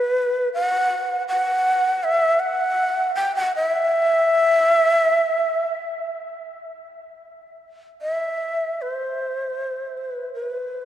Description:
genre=japanese traditional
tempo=70-81 BPM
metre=4/4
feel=rubato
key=unclear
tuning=A4 = 440 Hz
part: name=breathy mellow shakuhachi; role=solo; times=0.0-10.8 s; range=B4 to G5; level=-19 LUFS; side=equal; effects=none
room=wet cathedral reverb, RT60 5.9 s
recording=dark, warm production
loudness=-19 LUFS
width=side -11 dB against mid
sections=0.0-7.2 A section; 7.2-10.8 B section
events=none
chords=none

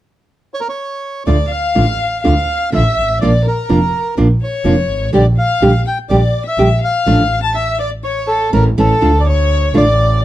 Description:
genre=tango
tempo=124 BPM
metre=4/4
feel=rubato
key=D harmonic minor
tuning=A4 = 440 Hz
part: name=bandoneon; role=melody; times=0.5-10.2 s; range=A4 to A5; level=-18 LUFS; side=right 1 dB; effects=none
part: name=warm violin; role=second line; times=1.3-10.2 s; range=A4 to A5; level=-21 LUFS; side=left 8 dB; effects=none
part: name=nylon-string guitar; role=accompaniment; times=1.3-9.8 s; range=D3 to G4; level=-14 LUFS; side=right 2 dB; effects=none
part: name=clear double bass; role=bass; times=1.3-10.2 s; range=F1 to D2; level=-15 LUFS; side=equal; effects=none
room=light reverb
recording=dark, warm production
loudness=-12 LUFS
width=side -14 dB against mid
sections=0.0-1.3 A section; 1.3-9.0 B section; 9.0-10.2 C section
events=band accent 7.1-9.0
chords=0.0 N.C.; 1.3 Dm; 3.2 Bb; 5.1 Gm/Bb; 7.1 Dm/A; 8.0 A; 9.0 Dm

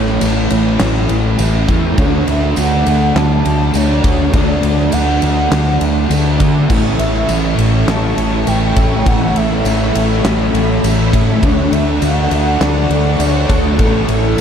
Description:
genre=rock, shoegaze and dream pop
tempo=102 BPM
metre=4/4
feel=straight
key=A major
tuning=A4 = 440 Hz
part: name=warm velvety synth lead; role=melody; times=0.0-14.4 s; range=A4 to A5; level=-22 LUFS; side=equal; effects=chorus, tape echo
part: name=overdriven semi-hollow guitar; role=riff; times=0.0-14.4 s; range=A2 to D4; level=-21 LUFS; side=right 2 dB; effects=analog chorus
part: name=raw garage guitar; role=riff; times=0.0-14.4 s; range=A2 to F#4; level=-21 LUFS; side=right 7 dB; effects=overdrive, reverse reverb
part: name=thick fuzz guitar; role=riff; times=0.0-14.4 s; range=A2 to D4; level=-19 LUFS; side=left 6 dB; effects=distortion, lush chorus
part: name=growling fingered electric bass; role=bass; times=0.0-14.4 s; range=A1 to D3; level=-17 LUFS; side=equal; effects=overdrive
part: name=huge arena drum kit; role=drums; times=0.1-14.4 s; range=crash cymbal, kick drum, ride cymbal, snare drum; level=-19 LUFS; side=equal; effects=none
part: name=tambourine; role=percussion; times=0.2-14.4 s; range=none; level=-34 LUFS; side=right 7 dB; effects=none
part: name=string machine, violins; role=sustained chords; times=6.7-14.4 s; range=D4 to C#6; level=-22 LUFS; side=left 1 dB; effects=ensemble chorus
room=moderate lush hall reverb, RT60 1.7 s, studio ambience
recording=dreamy mix soaked in reverb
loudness=-11 LUFS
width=side -8 dB against mid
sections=0.0-14.4 A section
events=none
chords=0.0 A; 2.0 D; 6.7 A; 11.4 Dmaj7; 13.8 A

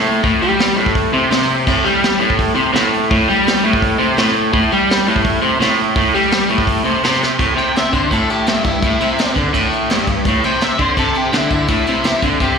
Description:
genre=garage rock duo or trio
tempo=168 BPM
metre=4/4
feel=straight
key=unclear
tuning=A4 = 440 Hz
part: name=crunchy overdriven guitar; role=riff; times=0.0-12.6 s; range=G2 to G3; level=-14 LUFS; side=equal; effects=slapback echo
part: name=vintage brush drum kit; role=drums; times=0.1-12.5 s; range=crash cymbal, hi-hat, kick drum, ride cymbal, snare drum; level=-19 LUFS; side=equal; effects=none
part: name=octave-fuzz lead guitar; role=melody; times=7.6-12.6 s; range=E4 to G5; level=-20 LUFS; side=left 2 dB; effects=distortion, slapback echo
room=light reverb, small room reverb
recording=live gig heard through the venue's PA, recital hall reverb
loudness=-13 LUFS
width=side -6 dB against mid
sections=0.0-7.4 A section; 7.4-12.6 B section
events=drum fill 7.2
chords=0.0 Am7; 7.4 A5

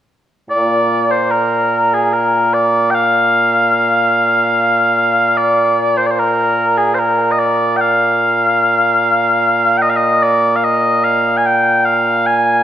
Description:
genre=scottish traditional, Scottish pipe music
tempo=74 BPM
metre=3/4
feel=straight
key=Bb mixolydian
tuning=A4 = 438 Hz
part: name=mellow small bagpipes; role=solo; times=0.5-12.6 s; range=Bb2 to Ab5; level=-11 LUFS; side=equal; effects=none
room=wet scoring stage reverb, RT60 1.7 s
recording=none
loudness=-11 LUFS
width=side -11 dB against mid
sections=0.5-12.6 A section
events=none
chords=none

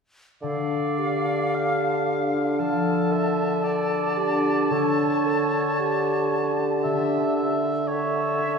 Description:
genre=classical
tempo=57 BPM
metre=4/4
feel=rubato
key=D minor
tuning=A4 = 440 Hz
part: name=bright silver concert flute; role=second line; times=0.4-8.6 s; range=E5 to A5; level=-30 LUFS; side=left 1 dB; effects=none
part: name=warm clarinet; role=second line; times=0.4-8.6 s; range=G4 to A4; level=-28 LUFS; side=left 3 dB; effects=none
part: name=warm oboe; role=second line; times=0.4-8.6 s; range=C#5 to F5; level=-29 LUFS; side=right 2 dB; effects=none
part: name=mellow bassoon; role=accompaniment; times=0.4-8.6 s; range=D3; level=-27 LUFS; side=right 3 dB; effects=none
part: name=concert harp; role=arpeggios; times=0.4-8.6 s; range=D3 to Bb4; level=-27 LUFS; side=left 2 dB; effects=none
room=wet recital hall reverb, RT60 1.6 s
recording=recorded in a church or concert hall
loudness=-21 LUFS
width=side -5 dB against mid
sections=0.4-8.6 A section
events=none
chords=0.4 Dm; 4.7 A7/D

